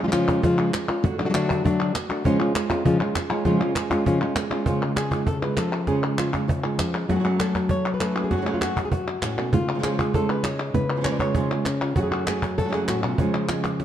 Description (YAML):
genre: flamenco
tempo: 198 BPM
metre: 4/4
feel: straight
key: C# phrygian dominant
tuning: A4 = 440 Hz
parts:
  - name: flamenco guitar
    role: melody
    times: 0.0-13.8 s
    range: F#2 to D5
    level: -24 LUFS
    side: left 2 dB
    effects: none
  - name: flamenco guitar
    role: stabs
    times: 0.0-13.8 s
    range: F#2 to F#4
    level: -28 LUFS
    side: right 6 dB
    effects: none
  - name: cajon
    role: percussion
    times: 0.1-13.8 s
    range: none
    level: -28 LUFS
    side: right 2 dB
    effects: none
  - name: palmas hand claps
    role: percussion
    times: 0.1-13.8 s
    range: none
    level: -30 LUFS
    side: left 1 dB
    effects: none
room: wet stone room reverb, RT60 1.2 s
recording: dark, warm production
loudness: -21 LUFS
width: side -10 dB against mid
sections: 0.0-4.7 A section; 4.7-13.8 B section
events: drum fill 13.6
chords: 0.0 C#; 1.0 D; 2.2 C#; 7.1 F#m; 9.5 C#; 12.0 F#m; 13.2 C#